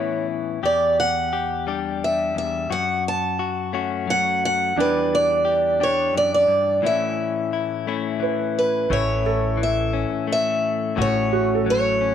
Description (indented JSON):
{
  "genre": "acoustic folk-pop ballad",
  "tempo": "87 BPM",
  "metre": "3/4",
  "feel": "straight",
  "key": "unclear",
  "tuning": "A4 = 440 Hz",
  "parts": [
    { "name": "picked acoustic archtop guitar", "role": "melody", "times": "0.0-12.1 s", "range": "B4 to A5", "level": "-21 LUFS", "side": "right 1 dB", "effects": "none" },
    { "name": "direct-recorded clean electric guitar", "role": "accompaniment", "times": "0.0-12.1 s", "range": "E2 to G4", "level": "-25 LUFS", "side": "left 8 dB", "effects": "spring reverb" },
    { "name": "felt-muted upright piano", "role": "arpeggios", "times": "0.0-0.9, 4.8-12.1 s", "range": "D4 to C#6", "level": "-28 LUFS", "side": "right 12 dB", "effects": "none" },
    { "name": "upright bass", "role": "bass", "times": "8.9-12.1 s", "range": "A1", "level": "-26 LUFS", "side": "right 2 dB", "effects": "none" }
  ],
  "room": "light reverb, small room ambience",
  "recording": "1960s-style stereo with parts hard left and right",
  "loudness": "-19 LUFS",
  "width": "side -9 dB against mid",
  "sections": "0.0-8.9 A section; 8.9-12.1 B section",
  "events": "none",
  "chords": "0.0 Aadd9; 0.6 Em7; 2.7 F#m; 4.8 Em7; 6.8 A; 11.0 F#m/A"
}